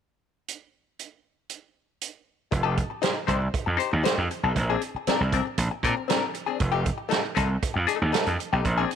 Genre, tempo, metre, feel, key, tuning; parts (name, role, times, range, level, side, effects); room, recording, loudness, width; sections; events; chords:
funk; 118 BPM; 4/4; straight; F mixolydian; A4 = 440 Hz
swinging big-band drum kit; drums; 0.5-9.0 s; hi-hat, kick drum, snare drum; -29 LUFS; right 6 dB
vintage hollow-body jazz guitar; accompaniment; 2.5-9.0 s; A3 to C5; -27 LUFS; left 10 dB; wah
gritty slap bass; bass; 2.5-8.8 s; F1 to Bb2; -25 LUFS; right 1 dB; overdrive
light reverb, small room ambience; 1960s-style stereo with parts hard left and right; -23 LUFS; side -8 dB against mid
0.5-2.5 A section; 2.5-9.0 B section
0.5 N.C.; 2.5 F9; 4.6 Bb9; 6.6 F9